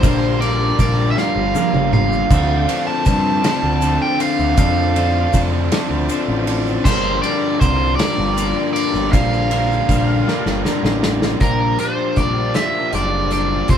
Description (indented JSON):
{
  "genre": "indie rock",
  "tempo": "53 BPM (dotted quarters)",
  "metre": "6/8",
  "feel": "straight",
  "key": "unclear",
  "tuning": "A4 = 440 Hz",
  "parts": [
    { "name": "biting overdriven guitar", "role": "melody", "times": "0.0-13.8 s", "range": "Bb4 to A5", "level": "-21 LUFS", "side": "right 2 dB", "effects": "none" },
    { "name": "bright tonewheel organ", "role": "sustained chords", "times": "0.0-13.8 s", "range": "G4 to D6", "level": "-33 LUFS", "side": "right 2 dB", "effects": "none" },
    { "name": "distorted electric guitar", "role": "riff", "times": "0.0-13.8 s", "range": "G2 to F4", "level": "-24 LUFS", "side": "right 3 dB", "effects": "overdrive" },
    { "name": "twelve-string electric guitar", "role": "riff", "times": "0.0-13.8 s", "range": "G2 to Bb4", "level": "-22 LUFS", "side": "left 5 dB", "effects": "none" },
    { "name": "growling picked electric bass", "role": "bass", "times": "0.0-13.8 s", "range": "F1 to G2", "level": "-21 LUFS", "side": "equal", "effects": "overdrive" },
    { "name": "loose indie drum kit", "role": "drums", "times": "0.0-13.8 s", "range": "crash cymbal, hi-hat, kick drum, ride cymbal, snare drum, toms", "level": "-20 LUFS", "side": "equal", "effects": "none" },
    { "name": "egg shaker", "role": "percussion", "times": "0.0-11.3 s", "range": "none", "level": "-37 LUFS", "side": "left 7 dB", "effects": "none" }
  ],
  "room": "moderate small room reverb, RT60 0.6 s",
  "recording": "band playing live in one room",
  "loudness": "-15 LUFS",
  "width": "side -8 dB against mid",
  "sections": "0.0-11.4 A section; 11.4-13.8 B section",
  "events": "drum fill 1.2-2.3, 10.3-11.4",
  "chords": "0.0 Gm7; 2.3 Dm7; 6.9 Gm7; 11.4 Bb6"
}